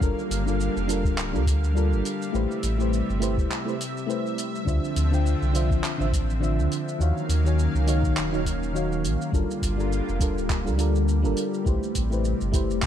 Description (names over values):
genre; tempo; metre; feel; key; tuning
sunset chillout; 103 BPM; 4/4; swing 56% on 16ths; G dorian; A4 = 439 Hz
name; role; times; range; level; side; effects
mellow FM electric piano; accompaniment; 0.0-12.9 s; D3 to Ab5; -28 LUFS; moving between left 5 dB and right 2 dB; chorus, auto-pan, ping-pong delay
lush unison pad; sustained chords; 0.0-12.9 s; C3 to F5; -31 LUFS; equal; chorus
warm sub bass; bass; 0.0-12.9 s; D1 to A2; -24 LUFS; equal; none
deep house drum kit; drums; 0.0-12.9 s; handclaps, hi-hat, shaker; -34 LUFS; right 1 dB; none
electronic kick drum; drums; 0.0-12.9 s; none; -26 LUFS; equal; none
room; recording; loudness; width
light reverb; dark, warm production; -22 LUFS; side -10 dB against mid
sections
0.0-9.3 A section; 9.3-12.9 A section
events
none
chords
0.0 Gm9; 2.3 Am9; 4.7 Dm9; 7.0 Ebm9; 9.3 Gm9; 11.7 Am9